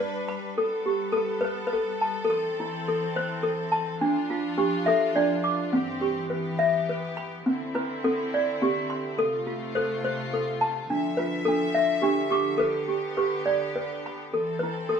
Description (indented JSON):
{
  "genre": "children's music, lullaby",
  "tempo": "104 BPM",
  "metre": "3/4",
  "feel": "straight",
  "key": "C major",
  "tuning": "A4 = 441 Hz",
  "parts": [
    { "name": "toy piano", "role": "melody", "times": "0.0-15.0 s", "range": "C4 to D6", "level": "-25 LUFS", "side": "equal", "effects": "none" },
    { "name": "clear studio string section", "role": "sustained chords", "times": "0.0-15.0 s", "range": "G2 to E5", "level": "-32 LUFS", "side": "left 2 dB", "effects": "none" }
  ],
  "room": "moderate large studio reverb, RT60 0.8 s",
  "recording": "band playing live in one room",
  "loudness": "-24 LUFS",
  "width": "side -7 dB against mid",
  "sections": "0.0-7.5 A section; 7.5-15.0 B section",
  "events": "none",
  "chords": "0.0 G; 0.6 Gadd9; 2.3 Am; 4.0 Dmadd9; 5.7 C/G; 6.3 G6; 7.5 Cadd9; 9.2 F; 10.9 Dmadd9; 12.6 G; 14.3 Am"
}